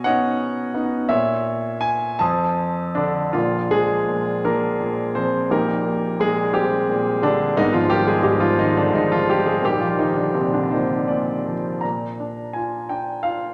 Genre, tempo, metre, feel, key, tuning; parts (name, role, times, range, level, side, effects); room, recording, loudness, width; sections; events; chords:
classical, lyrical solo piano; 52-59 BPM (dotted quarters); 6/8; rubato; A4 = 440 Hz
warm grand piano; solo; 0.0-13.5 s; Ab1 to Eb6; -21 LUFS; equal
wet concert hall reverb, RT60 2.0 s; -21 LUFS; mono
0.0-3.3 A section; 3.3-11.8 B section; 11.8-13.5 C section
0.0 Badd9; 1.1 A#m7b5; 2.2 F7; 3.3 Bb; 5.5 Eb6/Bb; 7.6 Ab5; 9.6 Bbsus4; 11.8 Bb